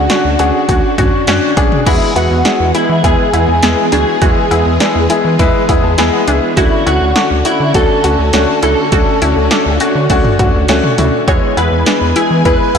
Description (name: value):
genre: synth-pop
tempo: 102 BPM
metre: 4/4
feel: straight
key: E mixolydian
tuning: A4 = 441 Hz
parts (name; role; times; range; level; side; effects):
- direct-recorded clean electric guitar; melody; 0.0-12.8 s; E4 to C#5; -16 LUFS; right 1 dB; ensemble chorus
- clear concert grand piano; accompaniment; 0.0-12.8 s; G#3 to B5; -15 LUFS; left 3 dB; none
- string machine, violas; sustained chords; 0.0-12.8 s; D3 to G#5; -19 LUFS; right 1 dB; ensemble chorus
- resonant blip pluck; arpeggios; 0.0-12.8 s; B3 to F#4; -19 LUFS; equal; phaser, ping-pong delay
- rubbery square bass; bass; 0.0-12.8 s; B1 to E3; -16 LUFS; right 1 dB; none
- punchy analog drum machine; drums; 0.1-12.8 s; cowbell, crash cymbal, hi-hat, kick drum, snare drum, toms; -16 LUFS; right 1 dB; none
room: moderate lush hall reverb, RT60 1.9 s, digital ambience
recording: blown-out, overdriven recording, overdrive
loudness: -9 LUFS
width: side -7 dB against mid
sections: 0.0-1.9 A section; 1.9-12.8 B section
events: grand piano fill 5.4-6.6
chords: 0.0 Dmaj7; 1.9 E; 6.6 Dmaj7; 11.3 E